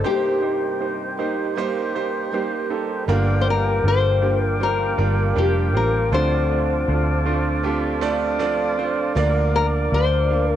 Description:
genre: pop ballad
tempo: 79 BPM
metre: 4/4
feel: straight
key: G minor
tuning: A4 = 440 Hz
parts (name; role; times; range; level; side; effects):
- nylon-string guitar; melody; 0.0-10.6 s; G4 to C5; -22 LUFS; left 6 dB; none
- clear concert grand piano; accompaniment; 0.0-10.6 s; G2 to F5; -25 LUFS; right 7 dB; cassette tape, plate reverb
- tonewheel organ; sustained chords; 0.0-10.6 s; Bb3 to D6; -27 LUFS; equal; overdrive, slow rotary speaker, cassette tape
- fingerpicked steel-string acoustic guitar; arpeggios; 0.0-10.6 s; G2 to Bb4; -28 LUFS; right 2 dB; cassette tape
- vintage muted fingered electric bass; bass; 3.1-10.6 s; F1 to D2; -21 LUFS; equal; none
room: moderate booth ambience, RT60 0.3 s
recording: home recording on cassette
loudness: -18 LUFS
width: side -11 dB against mid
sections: 0.0-3.1 A section; 3.1-10.6 B section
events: break 0.0-3.1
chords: 0.0 Cm7; 3.1 Gm7; 6.1 Dm7; 9.2 Bb/D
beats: | 0.05 0.81 1.56 2.32 | 3.08 3.84 4.60 5.36 | 6.12 6.88 7.64 8.40 | 9.16 9.92

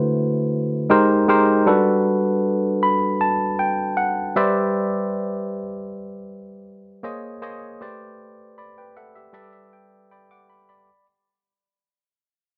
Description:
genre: soul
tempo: 78 BPM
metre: 4/4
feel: straight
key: G major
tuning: A4 = 441 Hz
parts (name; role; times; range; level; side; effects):
- tine electric piano; solo; 0.0-11.1 s; D3 to D6; -21 LUFS; equal; none
room: moderate echo chamber reverb, RT60 1.6 s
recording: nothing above 7.7 kHz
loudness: -20 LUFS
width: mono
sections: 0.0-10.9 A section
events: fade-out 0.0-10.9; tine electric piano fill 2.4-4.7, 8.6-10.9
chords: 0.0 D13; 0.9 Abmaj9; 1.7 Gmaj9; 4.4 Cmaj9/G; 7.0 Bbm11; 7.8 Am11; 9.4 G6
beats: 0.14 0.91 | 1.67 2.44 3.21 3.98 | 4.75 5.51 6.28 7.05 | 7.82 8.58 9.35 10.12

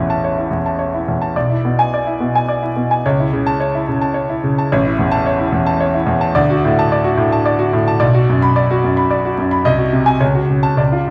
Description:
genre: classical, virtuoso piano study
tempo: 108 BPM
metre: 3/4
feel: rubato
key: A major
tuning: A4 = 440 Hz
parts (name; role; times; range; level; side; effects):
- clear concert grand piano; solo; 0.0-11.1 s; A1 to B5; -16 LUFS; equal; none
room: wet recital hall reverb, RT60 1.5 s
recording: vinyl crackle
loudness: -16 LUFS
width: mono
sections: 0.0-11.1 A section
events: none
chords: 0.0 A; 1.3 E7/B; 3.0 A/C#; 4.7 A; 6.4 D; 8.0 Bm; 9.7 G#7/B#; 10.2 F#m/C#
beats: 0.22 0.78 | 1.35 1.91 2.48 | 3.04 3.60 4.15 | 4.71 5.26 5.81 | 6.36 6.91 7.46 | 8.02 8.56 9.11 | 9.66 10.22 10.79

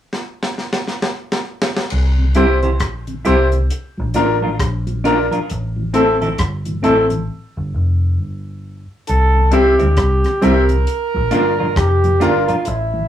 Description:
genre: roots reggae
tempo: 67 BPM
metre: 4/4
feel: swing 62% on 16ths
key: C mixolydian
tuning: A4 = 442 Hz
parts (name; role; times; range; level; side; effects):
- deep reggae drum kit; drums; 0.1-12.9 s; crash cymbal, hi-hat, kick drum, rim click, snare drum; -22 LUFS; equal; none
- vintage muted picked electric bass; bass; 1.9-13.1 s; F1 to D2; -18 LUFS; equal; none
- mellow tonewheel organ; accompaniment; 2.2-13.0 s; A2 to F4; -22 LUFS; equal; stopped rotary speaker
- semi-hollow electric guitar; accompaniment; 2.4-12.6 s; G3 to C5; -20 LUFS; right 2 dB; slapback echo
- bright concert grand piano; stabs; 2.4-12.4 s; C4 to C5; -17 LUFS; left 2 dB; none
- warm flugelhorn; melody; 9.1-13.1 s; E4 to Bb4; -18 LUFS; right 1 dB; slapback echo
room: wet studio reverb, RT60 0.6 s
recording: rough rehearsal-room recording, small room ambience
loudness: -14 LUFS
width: side -10 dB against mid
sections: 0.0-1.9 A section; 1.9-9.1 B section; 9.1-13.1 C section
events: drum fill 0.1-1.9; break 7.3-9.1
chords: 0.0 N.C.; 1.9 C; 3.7 Bb; 5.5 Am; 7.3 Fsus2; 9.1 C; 10.9 Bb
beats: 0.12 1.02 | 1.91 2.81 3.70 4.60 | 5.49 6.39 7.29 8.18 | 9.07 9.97 10.87 11.76 | 12.66

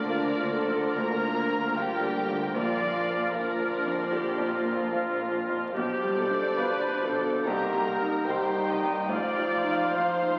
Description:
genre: classical, romantic movement for piano and orchestra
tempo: 65-77 BPM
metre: 4/4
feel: rubato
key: Bb major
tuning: A4 = 438 Hz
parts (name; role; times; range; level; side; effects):
- clear baby grand piano; melody; 0.0-10.4 s; A1 to F4; -34 LUFS; equal; none
- rich chamber violin section; melody; 0.0-10.4 s; D5 to Bb5; -37 LUFS; equal; none
- clear clarinet; second line; 0.0-10.4 s; D4 to F4; -40 LUFS; equal; none
- small flute group; second line; 0.0-10.4 s; F6 to G6; -39 LUFS; equal; none
- warm oboe; second line; 0.0-10.4 s; Bb4 to D5; -41 LUFS; equal; none
- warm studio violin section; second line; 0.0-10.4 s; D4 to Bb4; -40 LUFS; equal; none
- mellow bassoon; accompaniment; 0.0-10.4 s; Eb3 to F3; -36 LUFS; equal; none
- rich chamber viola section; accompaniment; 0.0-10.4 s; F4 to Eb5; -34 LUFS; equal; none
- mellow French horn section; sustained chords; 0.0-10.4 s; D3 to Bb3; -40 LUFS; equal; none
- warm chamber cello section; bass; 0.1-10.4 s; A2 to D3; -42 LUFS; equal; none
- warm chamber double bass section; bass; 0.1-10.4 s; A1 to D2; -48 LUFS; equal; none
room: wet concert hall reverb, RT60 1.9 s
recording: very old 78 rpm record, vinyl crackle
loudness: -28 LUFS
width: mono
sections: 0.0-10.4 A section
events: none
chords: 0.0 Bb/D; 2.6 Bb; 5.8 G7/B; 7.5 Cm7; 9.1 F7/A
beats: 0.10 0.96 1.76 | 2.55 3.35 4.13 4.93 | 5.75 6.58 7.46 8.28 | 9.09 9.92

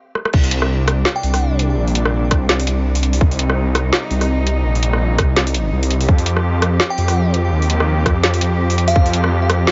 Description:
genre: half-time drum and bass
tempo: 167 BPM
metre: 4/4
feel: swing 57% on 16ths, half-time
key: C minor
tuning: A4 = 440 Hz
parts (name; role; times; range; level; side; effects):
- drum and bass drum kit; drums; 0.2-9.7 s; crash cymbal, hi-hat, rim click, snare drum; -22 LUFS; equal; none
- dark studio cello section; sustained chords; 0.3-9.7 s; C3 to G4; -27 LUFS; equal; sidechain pumping
- dark detuned saw bass; bass; 0.3-9.7 s; Bb1 to F2; -19 LUFS; equal; tube saturation
- electronic kick drum; drums; 0.3-9.0 s; none; -17 LUFS; equal; none
- glassy synth bell; melody; 1.2-1.5, 6.9-9.2 s; F5 to G5; -27 LUFS; equal; chorus, delay
room: little or no reverb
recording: nothing above 7.6 kHz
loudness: -17 LUFS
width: mono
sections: 0.3-9.7 A section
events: break 0.0-0.3; drum fill 0.2; drop 0.3-9.7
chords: 0.3 Cm; 6.1 Fsus2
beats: | 0.34 0.69 1.05 1.41 | 1.77 2.13 2.49 2.85 | 3.21 3.57 3.93 4.29 | 4.65 5.01 5.37 5.72 | 6.08 6.44 6.80 7.16 | 7.52 7.88 8.24 8.60 | 8.96 9.32 9.68

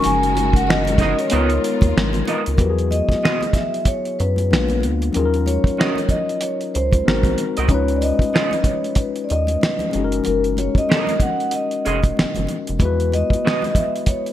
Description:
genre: R&B, neo-soul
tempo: 94 BPM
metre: 4/4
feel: swing 59% on 16ths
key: F# major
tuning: A4 = 440 Hz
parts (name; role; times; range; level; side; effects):
- vibraphone with soft mallets; melody; 0.0-14.2 s; A#4 to G#5; -23 LUFS; equal; none
- overdriven tine electric piano; accompaniment; 0.0-14.3 s; F#3 to B4; -24 LUFS; left 7 dB; none
- warm studio string section; sustained chords; 0.0-2.6 s; D#3 to A#4; -30 LUFS; left 2 dB; none
- cloth-damped thuddy drum kit; drums; 0.0-14.3 s; finger snaps, hi-hat, kick drum, snare drum; -19 LUFS; right 1 dB; gated reverb
- congas; percussion; 0.0-14.3 s; none; -32 LUFS; right 1 dB; none
- rubbery square bass; bass; 0.1-13.4 s; E#1 to F#2; -22 LUFS; equal; none
- electric guitar through a small old amp; second line; 1.0-13.6 s; B3 to D#5; -26 LUFS; right 4 dB; analog chorus
room: light reverb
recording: bright 1980s-style digital production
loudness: -16 LUFS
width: side -12 dB against mid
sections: 0.0-2.6 A section; 2.6-14.3 B section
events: none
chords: 0.0 F#69; 1.3 C#13; 2.6 Emaj9; 4.5 A#7b9; 5.1 D#m7; 7.1 G#9; 7.7 C#9; 9.9 F#69; 12.8 Emaj9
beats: | 0.03 0.67 1.31 1.95 | 2.58 3.22 3.86 4.50 | 5.14 5.78 6.41 7.05 | 7.69 8.33 8.97 9.61 | 10.24 10.88 11.52 12.16 | 12.80 13.44 14.07

